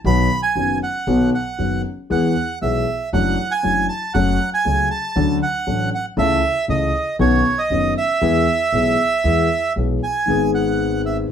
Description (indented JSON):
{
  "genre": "tango",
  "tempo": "117 BPM",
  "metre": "4/4",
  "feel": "rubato",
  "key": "E major",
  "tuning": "A4 = 440 Hz",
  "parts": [
    { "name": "dark concert grand piano", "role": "accompaniment", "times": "0.0-11.3 s", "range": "F#1 to A4", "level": "-20 LUFS", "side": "left 3 dB", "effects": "none" },
    { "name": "upright bass", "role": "bass", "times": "0.0-11.3 s", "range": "F#1 to E2", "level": "-24 LUFS", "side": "right 1 dB", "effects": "none" },
    { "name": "bandoneon", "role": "melody", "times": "0.1-11.2 s", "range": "C#5 to B5", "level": "-20 LUFS", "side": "right 4 dB", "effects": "none" }
  ],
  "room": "moderate studio reverb, RT60 0.6 s",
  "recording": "band playing live in one room",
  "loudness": "-16 LUFS",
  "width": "side -8 dB against mid",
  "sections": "0.0-10.3 A section; 10.3-11.3 B section",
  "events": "none",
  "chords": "0.0 B; 2.1 E; 3.1 Dadd9/F#; 4.1 F#m; 5.2 Dmaj7; 6.2 A/C#; 7.2 Badd9; 8.2 E; 10.3 G#m",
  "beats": "| 0.05 0.56 1.07 1.58 | 2.10 2.62 3.13 3.64 | 4.15 4.66 5.17 5.67 | 6.18 6.69 7.19 7.71 | 8.22 8.73 9.24 9.76 | 10.28 10.79 11.30"
}